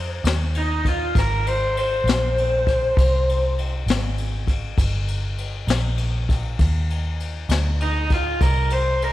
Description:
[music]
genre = slow blues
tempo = 66 BPM (dotted quarters)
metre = 12/8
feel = straight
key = C minor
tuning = A4 = 440 Hz
[part]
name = vintage muted fingered electric bass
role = bass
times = 0.0-9.1 s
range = G1 to F2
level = -22 LUFS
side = equal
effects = none
[part]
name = jazz brush drum kit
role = drums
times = 0.2-9.1 s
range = kick drum, ride cymbal, snare drum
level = -24 LUFS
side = left 2 dB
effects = none
[part]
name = raw garage guitar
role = melody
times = 0.6-9.1 s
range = Eb4 to C5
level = -22 LUFS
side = equal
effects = overdrive, spring reverb
[sound]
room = small room ambience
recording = 1960s-style stereo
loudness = -19 LUFS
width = side -15 dB against mid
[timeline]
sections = 0.0-9.1 A section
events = overdriven electric guitar solo 0.0-9.1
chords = 0.0 Fm7 (rootless); 3.0 Cm7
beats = 0.24 1.15 2.05 | 2.96 3.87 4.77 5.68 | 6.58 7.49 8.39

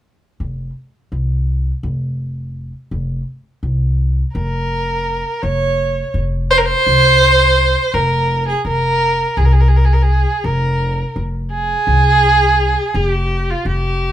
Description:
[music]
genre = Turkish makam ensemble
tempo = 168 BPM (eighths)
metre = 7/8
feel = straight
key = F makam ussak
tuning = A4 = 440 Hz
[part]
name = upright bass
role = bass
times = 0.4-14.1 s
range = F1 to C2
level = -17 LUFS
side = equal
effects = none
[part]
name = warm violin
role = melody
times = 4.3-14.1 s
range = F4 to Db5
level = -15 LUFS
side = right 2 dB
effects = none
[sound]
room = moderate large studio reverb, RT60 0.8 s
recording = band playing live in one room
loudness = -13 LUFS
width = side -11 dB against mid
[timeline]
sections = 0.4-5.4 A section; 5.4-14.1 B section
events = none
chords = none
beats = | 0.41 0.77 1.13 1.49 1.85 2.20 2.56 | 2.92 3.28 3.64 4.00 4.36 4.71 5.07 | 5.43 5.79 6.15 6.50 6.86 7.22 7.58 | 7.94 8.29 8.65 9.01 9.37 9.73 10.08 | 10.44 10.80 11.16 11.51 11.87 12.23 12.59 | 12.94 13.30 13.66 14.02

